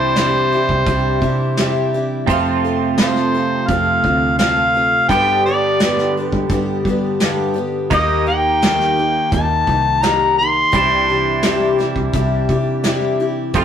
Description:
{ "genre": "folk rock and heartland rock", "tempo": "85 BPM", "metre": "4/4", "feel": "straight", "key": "C major", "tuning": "A4 = 441 Hz", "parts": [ { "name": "mellow harmonica", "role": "melody", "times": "0.0-11.8 s", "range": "C5 to C6", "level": "-16 LUFS", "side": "left 1 dB", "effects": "none" }, { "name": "picked twelve-string acoustic guitar", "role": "accompaniment", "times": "0.0-13.6 s", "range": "G2 to A4", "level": "-21 LUFS", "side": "left 4 dB", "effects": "none" }, { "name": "twelve-string electric guitar", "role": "riff", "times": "0.0-13.6 s", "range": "F2 to G4", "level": "-21 LUFS", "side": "right 6 dB", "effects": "spring reverb" }, { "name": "fingered electric bass", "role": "bass", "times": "0.0-13.6 s", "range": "C2 to G3", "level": "-24 LUFS", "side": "equal", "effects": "none" }, { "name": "soft brush drum kit", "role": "drums", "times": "0.2-13.6 s", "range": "hi-hat, kick drum, snare drum", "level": "-20 LUFS", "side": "right 1 dB", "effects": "none" } ], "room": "moderate stone room reverb, RT60 0.9 s", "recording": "rough rehearsal-room recording", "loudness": "-14 LUFS", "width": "side -8 dB against mid", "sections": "0.0-13.6 A section", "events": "none", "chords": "0.0 Cadd9; 2.3 F; 5.1 G; 7.9 Eb; 10.7 Cadd9" }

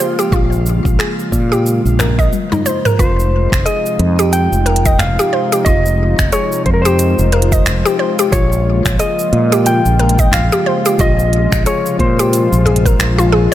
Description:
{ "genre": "organic downtempo", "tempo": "90 BPM", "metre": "4/4", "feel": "swing 59% on 16ths", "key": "F minor", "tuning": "A4 = 440 Hz", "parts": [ { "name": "clean lap steel guitar", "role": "melody", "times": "0.0-13.3 s", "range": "Bb4 to G5", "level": "-19 LUFS", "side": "left 1 dB", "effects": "ping-pong delay" }, { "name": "warm analog pad", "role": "sustained chords", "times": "0.0-13.5 s", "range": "C3 to F4", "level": "-20 LUFS", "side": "left 2 dB", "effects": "chorus, vintage 12-bit sampler grit, sidechain pumping" }, { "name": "mallet-like synth pluck", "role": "arpeggios", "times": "0.0-13.5 s", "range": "Eb4 to Eb5", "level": "-18 LUFS", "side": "equal", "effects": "chorus, ping-pong delay" }, { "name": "afro-pop drum kit", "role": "drums", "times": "0.2-13.3 s", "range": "cabasa, finger snaps, hi-hat, toms", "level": "-21 LUFS", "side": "right 1 dB", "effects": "none" }, { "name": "fretless electric bass", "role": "bass", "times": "0.3-13.5 s", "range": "F1 to Bb2", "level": "-14 LUFS", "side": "equal", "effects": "sidechain pumping" }, { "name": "electronic kick drum", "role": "drums", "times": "0.3-13.0 s", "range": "none", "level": "-16 LUFS", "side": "equal", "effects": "none" }, { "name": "frame drum", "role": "percussion", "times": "2.0-5.1, 10.3-12.8 s", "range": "none", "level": "-23 LUFS", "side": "equal", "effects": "none" } ], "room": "light reverb, digital ambience", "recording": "none", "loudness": "-11 LUFS", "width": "side -13 dB against mid", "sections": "0.0-3.0 A section; 3.0-13.5 B section", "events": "break 2.3-3.0; drum fill 2.3-3.0", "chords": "0.0 Bbm7; 3.0 Fm7; 8.3 Bbm7" }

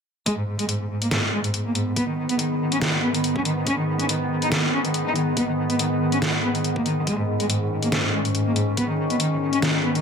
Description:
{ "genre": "heavy wobble dubstep", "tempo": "141 BPM", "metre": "4/4", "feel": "swing 55% on 16ths, half-time", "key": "G# minor", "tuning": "A4 = 440 Hz", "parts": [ { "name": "dark cello", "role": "melody", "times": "0.3-10.0 s", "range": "G#2 to D#4", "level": "-24 LUFS", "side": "equal", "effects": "digital delay" }, { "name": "evolving wavetable pad", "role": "sustained chords", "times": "1.5-10.0 s", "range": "G#2 to C#4", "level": "-26 LUFS", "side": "left 1 dB", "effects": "chorus, built-in reverb, sidechain pumping" }, { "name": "dubstep drum kit", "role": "drums", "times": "0.3-10.0 s", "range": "hi-hat, snare drum", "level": "-25 LUFS", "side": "equal", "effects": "none" }, { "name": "electronic kick drum", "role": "drums", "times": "0.3-8.9 s", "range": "none", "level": "-30 LUFS", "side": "right 1 dB", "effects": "high-pass filter on kick" } ], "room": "light reverb, digital ambience", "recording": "none", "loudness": "-20 LUFS", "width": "side -6 dB against mid", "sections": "0.3-10.0 A section", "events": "none", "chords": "0.3 G#m" }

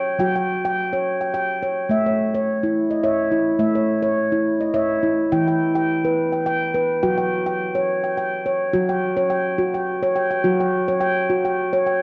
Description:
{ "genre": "world meditative, meditative tuned percussion", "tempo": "105 BPM", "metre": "3/4", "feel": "swing 54% on 16ths", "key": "F# dorian", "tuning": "A4 = 437 Hz", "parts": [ { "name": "handpan", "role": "solo", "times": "0.0-12.0 s", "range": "E3 to G5", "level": "-21 LUFS", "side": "equal", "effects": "none" } ], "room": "wet scoring stage reverb, RT60 1.9 s, small room ambience", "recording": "dark, warm production", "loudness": "-21 LUFS", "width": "mono", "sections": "0.0-8.7 A section; 8.7-12.0 B section", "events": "none", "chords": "0.0 F#5; 1.9 A; 5.3 E5; 7.0 F#5" }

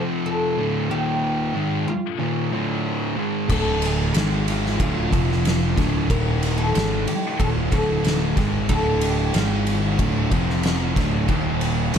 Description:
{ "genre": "stoner and doom metal", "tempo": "92 BPM", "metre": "4/4", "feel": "straight", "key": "unclear", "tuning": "A4 = 436 Hz", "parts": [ { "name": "raw garage guitar", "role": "riff", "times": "0.0-12.0 s", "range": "D2 to G#3", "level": "-29 LUFS", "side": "equal", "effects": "overdrive" }, { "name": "thick fuzz guitar", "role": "riff", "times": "0.0-12.0 s", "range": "D2 to G#3", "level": "-27 LUFS", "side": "left 11 dB", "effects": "distortion" }, { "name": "thick fuzz guitar", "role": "riff", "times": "0.0-12.0 s", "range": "D2 to G#3", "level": "-27 LUFS", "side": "right 10 dB", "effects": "distortion" }, { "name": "oud", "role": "melody", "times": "0.3-12.0 s", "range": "F4 to Bb4", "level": "-28 LUFS", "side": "equal", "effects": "tape echo" }, { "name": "picked electric bass", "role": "bass", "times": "3.5-12.0 s", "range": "D1 to G#1", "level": "-24 LUFS", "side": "equal", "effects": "overdrive" }, { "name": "oversized low-tuned drum kit", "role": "drums", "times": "3.5-12.0 s", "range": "crash cymbal, kick drum, ride cymbal, snare drum", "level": "-24 LUFS", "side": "equal", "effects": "none" } ], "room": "studio ambience", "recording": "dark, warm production", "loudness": "-19 LUFS", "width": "side -8 dB against mid", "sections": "0.0-12.0 A section", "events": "none", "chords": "0.0 F5; 0.6 D5; 0.9 Eb5; 1.6 Dm; 4.1 G#5; 4.8 Dm; 5.1 F5; 5.8 Dm; 6.1 Eb5; 6.7 D5; 9.3 G#5; 10.0 Dm; 10.3 F5; 11.0 Dm; 11.3 Eb5" }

